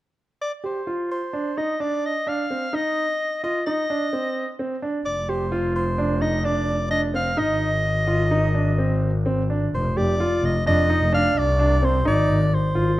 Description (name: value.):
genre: contemporary instrumental, chamber music in an uneven meter.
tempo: 129 BPM.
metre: 5/4.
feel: straight.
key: F dorian.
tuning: A4 = 439 Hz.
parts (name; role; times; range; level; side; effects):
warm soprano saxophone; melody; 0.4-13.0 s; C5 to F5; -25 LUFS; equal; none.
clear grand piano; arpeggios; 0.6-12.9 s; C4 to G4; -25 LUFS; right 2 dB; none.
clear double bass; bass; 5.1-12.9 s; F1 to F2; -22 LUFS; left 1 dB; none.
room: light reverb.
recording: dark, warm production.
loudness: -20 LUFS.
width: side -16 dB against mid.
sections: 0.4-9.7 A section; 9.7-13.0 B section.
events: none.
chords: 0.4 F5; 2.7 Cmadd9; 5.1 F5; 7.4 Ab; 9.7 F5; 12.1 Ab.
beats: | 0.40 0.87 1.34 1.81 2.27 | 2.74 3.20 3.67 4.13 4.59 | 5.05 5.52 5.98 6.44 6.91 | 7.38 7.84 8.31 8.78 9.26 | 9.73 10.20 10.66 11.13 11.60 | 12.06 12.52 12.99.